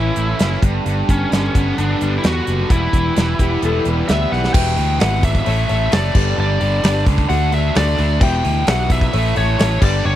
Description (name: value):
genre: classic rock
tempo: 131 BPM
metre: 4/4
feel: straight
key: E dorian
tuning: A4 = 440 Hz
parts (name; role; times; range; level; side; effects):
- biting lead guitar; melody; 0.0-10.2 s; C#4 to G5; -22 LUFS; equal; overdrive
- overdriven tonewheel organ; sustained chords; 0.0-4.5 s; D3 to B4; -30 LUFS; left 1 dB; slow rotary speaker, chorus vibrato
- distorted electric guitar; riff; 0.0-10.2 s; E2 to D4; -22 LUFS; right 1 dB; overdrive
- sustaining fretless electric bass; bass; 0.0-10.2 s; E1 to E2; -19 LUFS; equal; wide subtle chorus
- big rock drum kit; drums; 0.2-9.9 s; crash cymbal, hi-hat, kick drum, snare drum; -18 LUFS; equal; none
- electric slide guitar; second line; 3.4-4.4 s; G4 to E5; -24 LUFS; left 5 dB; none
- warm upright piano; accompaniment; 4.5-10.2 s; E4 to E5; -28 LUFS; left 12 dB; none
room: little or no reverb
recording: dry, close 1970s-style studio recording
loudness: -14 LUFS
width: side -12 dB against mid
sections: 0.0-4.5 A section; 4.5-10.2 B section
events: drum fill 4.3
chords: 0.0 A; 0.6 G; 2.7 Em; 5.5 A; 6.2 G; 7.3 D; 8.2 Em; 9.1 A